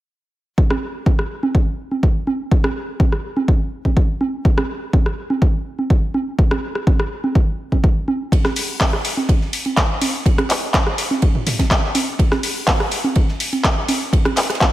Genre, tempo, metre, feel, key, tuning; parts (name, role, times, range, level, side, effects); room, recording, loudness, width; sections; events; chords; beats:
house; 124 BPM; 4/4; straight
electronic kick drum; drums; 0.6-14.7 s; -16 LUFS; equal; studio reverb
house drum kit; drums; 0.7-14.7 s; handclaps, hi-hat, rim click; -21 LUFS; equal; studio reverb
electronic congas and toms; percussion; 0.7-14.7 s; -24 LUFS; right 3 dB; sidechain pumping on perc, studio reverb, sidechain pumping on toms
deep reggae drum kit; drums; 8.3-14.7 s; hi-hat, ride cymbal, snare drum; -30 LUFS; right 2 dB; high-pass filter on cymbals, studio reverb, high-pass filter on hats, high-pass filter on snare, high-pass filter on room
light reverb; -16 LUFS; side -15 dB against mid
0.6-14.7 A section
| 0.58 1.06 1.55 2.03 | 2.52 3.00 3.48 3.97 | 4.45 4.93 5.42 5.90 | 6.39 6.87 7.35 7.84 | 8.32 8.80 9.29 9.77 | 10.26 10.74 11.22 11.71 | 12.19 12.68 13.16 13.64 | 14.13 14.61